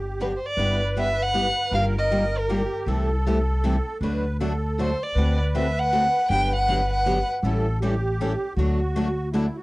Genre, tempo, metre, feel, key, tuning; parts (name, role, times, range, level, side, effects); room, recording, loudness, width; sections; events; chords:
acoustic string swing (jazz manouche); 158 BPM; 3/4; swing 62% on 8ths; G major; A4 = 439 Hz
musette accordion; second line; 0.0-9.6 s; E4 to B4; -31 LUFS; right 2 dB; cassette tape, plate reverb
upright bass; bass; 0.0-9.5 s; G1 to D2; -25 LUFS; equal; tube saturation
warm violin; melody; 0.2-2.7, 4.8-7.3 s; Bb4 to G5; -24 LUFS; equal
picked steel-string acoustic guitar; accompaniment; 0.2-9.5 s; C3 to A4; -30 LUFS; left 3 dB; cassette tape
picked steel-string acoustic guitar; accompaniment; 0.2-9.5 s; C3 to A4; -31 LUFS; right 2 dB; cassette tape
moderate small room ambience, RT60 0.5 s; home recording on cassette; -21 LUFS; side -21 dB against mid
0.6-9.6 A section
0.0 Gmaj7; 0.6 G6; 1.7 Ebadd9/G; 2.9 C6; 4.0 D; 5.2 D7; 6.3 Gmaj7; 7.4 A7; 8.6 D